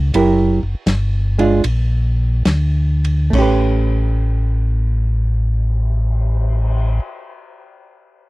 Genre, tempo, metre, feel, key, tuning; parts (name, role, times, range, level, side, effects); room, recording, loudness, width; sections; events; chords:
soul jazz organ trio; 66-85 BPM; 4/4; swing 68% on 8ths; A mixolydian; A4 = 441 Hz
mellow tonewheel organ; bass; 0.0-7.0 s; F#1 to D2; -16 LUFS; equal; slow rotary speaker
hollow-body jazz guitar; accompaniment; 0.1-7.1 s; F#3 to B4; -16 LUFS; right 3 dB
warm soul drum kit; drums; 0.1-6.8 s; crash cymbal, cymbal swell, hi-hat, kick drum, ride cymbal, snare drum; -24 LUFS; left 1 dB
little or no reverb; dry, close 1970s-style studio recording; -14 LUFS; side -20 dB against mid
0.0-3.3 A section; 3.3-7.0 B section
slowing down 0.0-3.3
0.1 F#7b9; 1.6 Bb; 3.3 A9